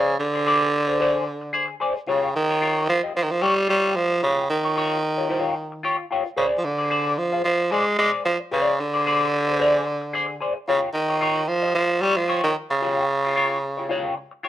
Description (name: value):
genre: funk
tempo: 112 BPM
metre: 4/4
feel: swing 56% on 16ths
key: unclear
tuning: A4 = 439 Hz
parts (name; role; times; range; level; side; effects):
- growling tenor saxophone; melody; 0.0-14.3 s; Db3 to Ab3; -21 LUFS; right 1 dB; none
- semi-hollow electric guitar; accompaniment; 0.0-14.5 s; F4 to F5; -24 LUFS; left 2 dB; wah, lush chorus
room: moderate large studio reverb, RT60 0.7 s, small room ambience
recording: none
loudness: -20 LUFS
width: side -12 dB against mid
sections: 0.0-14.5 A section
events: none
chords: 0.0 Fm6 (rootless); 2.1 Eb9; 6.4 Fm6 (rootless); 10.7 Eb9 (rootless)